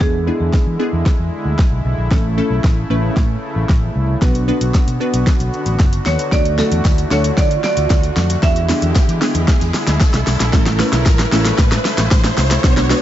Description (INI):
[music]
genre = dance-pop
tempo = 114 BPM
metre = 4/4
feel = straight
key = unclear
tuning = A4 = 443 Hz
[part]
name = marimba with hard mallets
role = melody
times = 0.0-1.0, 6.1-9.4 s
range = G#4 to E5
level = -22 LUFS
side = right 3 dB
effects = digital delay
[part]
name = glassy wavetable pluck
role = accompaniment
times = 0.0-13.0 s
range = A3 to B4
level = -22 LUFS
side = equal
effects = chorus, sidechain pumping
[part]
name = soft supersaw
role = sustained chords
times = 0.0-13.0 s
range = C#3 to F#4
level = -24 LUFS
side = equal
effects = sidechain pumping
[part]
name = fingered electric bass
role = bass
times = 0.0-12.9 s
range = F#1 to E3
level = -18 LUFS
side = equal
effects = sidechain pumping
[part]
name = deep house drum kit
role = drums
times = 0.0-13.0 s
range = hi-hat, kick drum, shaker, snare drum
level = -15 LUFS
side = equal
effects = none
[part]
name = riser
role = sound effects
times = 3.3-13.0 s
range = none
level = -27 LUFS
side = equal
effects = none
[part]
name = tambourine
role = percussion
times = 6.3-13.0 s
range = none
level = -37 LUFS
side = left 11 dB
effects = none
[sound]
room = digital ambience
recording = nothing above 7.8 kHz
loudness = -13 LUFS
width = side -12 dB against mid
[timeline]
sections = 0.0-13.0 A section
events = build-up 0.0-13.0; drum fill 0.0-13.0; riser 3.3-13.0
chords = 0.0 E7; 2.1 A; 4.2 Bm; 6.3 D; 8.4 E7; 10.5 A